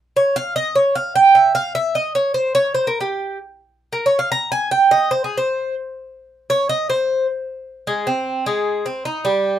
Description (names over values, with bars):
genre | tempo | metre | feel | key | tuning
latin | 152 BPM | 4/4 | straight | Ab major | A4 = 439 Hz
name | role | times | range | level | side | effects
Cuban tres | solo | 0.2-9.6 s | G3 to Bb5 | -16 LUFS | right 1 dB | none
room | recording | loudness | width
light reverb | faint mains hum | -16 LUFS | side -11 dB against mid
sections
0.0-7.9 A section; 7.9-9.6 B section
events
Cuban tres solo 0.0-7.9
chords
none